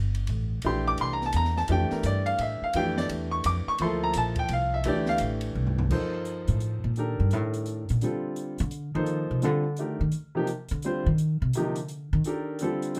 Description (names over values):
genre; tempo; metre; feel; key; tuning
modal jazz; 170 BPM; 3/4; swing 63% on 8ths; Bb lydian, Eb lydian from 5.9 s; A4 = 437 Hz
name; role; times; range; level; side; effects
upright bass; bass; 0.0-12.2 s; G1 to Eb3; -30 LUFS; equal; none
open jazz drum kit; drums; 0.1-13.0 s; crash cymbal, hi-hat, kick drum, ride cymbal, snare drum, toms; -40 LUFS; equal; none
clear concert grand piano; accompaniment; 0.6-13.0 s; C3 to D6; -30 LUFS; equal; none
room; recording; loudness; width
light reverb; none; -28 LUFS; mono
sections
0.0-5.9 A section; 5.9-13.0 A section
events
drum fill 5.6-5.9; upright bass solo 5.9-13.0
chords
0.0 Bbmaj9; 5.9 Ebmaj9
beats
0.29 | 0.64 0.99 1.34 | 1.70 2.05 2.40 | 2.75 3.10 3.45 | 3.81 4.16 4.51 | 4.86 5.21 5.56 | 5.91 6.27 6.62 | 6.97 7.32 7.67 | 8.03 8.38 8.73 | 9.08 9.43 9.79 | 10.14 10.49 10.84 | 11.19 11.54 11.90 | 12.25 12.60 12.95